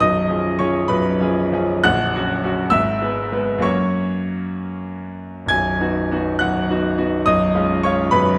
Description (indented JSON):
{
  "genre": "classical, romantic character piece for solo piano",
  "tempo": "66 BPM (dotted quarters)",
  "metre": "6/8",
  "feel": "uneven beats, rubato",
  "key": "B major",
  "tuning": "A4 = 440 Hz",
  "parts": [
    { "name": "bright grand piano", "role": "solo", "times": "0.0-8.4 s", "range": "A#0 to G#6", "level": "-19 LUFS", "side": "equal", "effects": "none" }
  ],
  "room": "wet scoring stage reverb, RT60 1.8 s",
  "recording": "none",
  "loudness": "-19 LUFS",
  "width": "mono",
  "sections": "0.0-8.4 A section",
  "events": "none",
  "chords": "0.0 C#7/B; 1.8 F#/A#; 2.7 E/G#; 3.6 F#; 5.5 B; 7.3 C#7/B",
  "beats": "| 0.01 0.90 | 1.85 2.72 | 3.63 4.56 | 5.49 6.40 | 7.27 8.12"
}